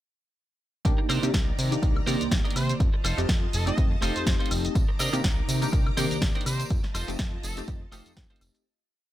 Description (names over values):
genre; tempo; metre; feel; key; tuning
filtered disco house; 123 BPM; 4/4; swing 55% on 16ths; C dorian; A4 = 440 Hz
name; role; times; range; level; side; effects
funky polysynth comp; accompaniment; 0.8-8.6 s; Eb3 to D5; -31 LUFS; equal; chorus, phaser, sidechain pumping
string machine, full ensemble; sustained chords; 0.9-8.6 s; Eb3 to D6; -37 LUFS; equal; ensemble chorus, sidechain pumping
fat analog bass; bass; 0.9-8.5 s; F1 to C3; -29 LUFS; equal; sidechain pumping
electronic kick drum; drums; 0.9-8.3 s; none; -26 LUFS; equal; none
punchy analog drum machine; drums; 0.9-8.6 s; hi-hat, shaker, snare drum, woodblock; -32 LUFS; equal; sidechain pumping on hats, sidechain pumping on perc
twelve-string electric guitar; riff; 1.0-8.6 s; D4 to Eb5; -33 LUFS; right 2 dB; lush chorus, sidechain pumping
clear trumpet section; melody; 2.6-7.5 s; A4 to Eb5; -36 LUFS; right 1 dB; sidechain pumping, digital delay
tambourine; percussion; 4.8-8.6 s; none; -40 LUFS; right 1 dB; sidechain pumping on perc
room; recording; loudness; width
digital ambience; none; -23 LUFS; side -14 dB against mid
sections
0.9-8.7 drop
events
drop 0.9-8.7; fade-out 6.1-8.7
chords
0.9 Cm9; 2.8 F7; 4.8 Cm9; 6.7 F7